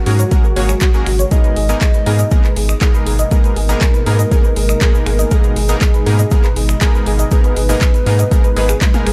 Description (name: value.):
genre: progressive house.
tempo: 120 BPM.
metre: 4/4.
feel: straight.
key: G# minor.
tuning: A4 = 441 Hz.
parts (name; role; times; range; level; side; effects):
soft octave-layered synth lead; melody; 0.0-9.1 s; F#4 to D#5; -25 LUFS; equal; chorus, dub echo.
warm analog pad; sustained chords; 0.0-9.1 s; B2 to A#4; -28 LUFS; equal; chorus, sidechain pumping.
soft round pluck; arpeggios; 0.1-9.1 s; F#4 to A#5; -27 LUFS; equal; lush chorus, sidechain pumping, dub echo.
supersaw stab; stabs; 0.1-9.1 s; G#2 to C#5; -26 LUFS; equal; sidechain pumping.
round analog bass; bass; 0.1-9.1 s; G#1 to G#2; -18 LUFS; equal; sidechain pumping.
house drum kit; drums; 0.1-9.1 s; finger snaps, handclaps, hi-hat, toms; -26 LUFS; equal; studio reverb.
egg shaker; percussion; 0.2-9.0 s; none; -33 LUFS; equal; none.
electronic kick drum; drums; 0.3-8.9 s; none; -15 LUFS; equal; overdrive, studio reverb.
room: little or no reverb.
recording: dark, warm production.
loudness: -14 LUFS.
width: mono.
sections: 0.0-9.1 A section.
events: drum fill 8.8-9.1.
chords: 0.0 F#add9/G#; 1.3 G#madd9.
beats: 0.32 0.82 | 1.32 1.82 2.32 2.82 | 3.32 3.82 4.32 4.82 | 5.32 5.82 6.32 6.82 | 7.32 7.82 8.32 8.82.